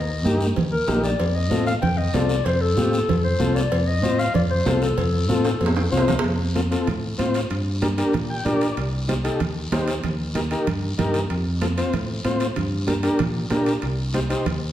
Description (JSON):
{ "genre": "latin, cumbia", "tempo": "190 BPM", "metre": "4/4", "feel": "straight", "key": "unclear", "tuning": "A4 = 441 Hz", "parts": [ { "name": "breathy clarinet", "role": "second line", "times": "0.0-5.9 s", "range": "A4 to G5", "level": "-25 LUFS", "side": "left 3 dB", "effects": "none" }, { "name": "fingered electric bass", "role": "bass", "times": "0.0-14.7 s", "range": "Bb1 to Bb2", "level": "-24 LUFS", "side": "equal", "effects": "none" }, { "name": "overdriven combo organ", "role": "accompaniment", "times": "0.2-14.5 s", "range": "Bb3 to G5", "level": "-24 LUFS", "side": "left 2 dB", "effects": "none" }, { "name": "guiro", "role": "percussion", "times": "0.2-14.7 s", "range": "none", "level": "-36 LUFS", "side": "left 2 dB", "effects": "none" }, { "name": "congas", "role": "percussion", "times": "0.3-14.6 s", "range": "none", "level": "-28 LUFS", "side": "right 3 dB", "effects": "none" }, { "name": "cowbell and timbales", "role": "percussion", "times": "0.6-14.6 s", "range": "none", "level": "-32 LUFS", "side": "right 2 dB", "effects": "none" } ], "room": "wet large studio reverb, RT60 1.3 s", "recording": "heard from further back in the room", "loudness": "-20 LUFS", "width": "side -12 dB against mid", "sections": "0.0-6.2 A section; 6.2-14.7 B section", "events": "clarinet solo 0.0-6.2; drum fill 5.5-6.2; transistor combo organ fill 8.1-8.8", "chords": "0.0 Eb; 1.2 F; 7.5 Gm; 8.8 Cm; 10.0 Eb; 11.3 F; 12.6 Gm; 13.8 Cm" }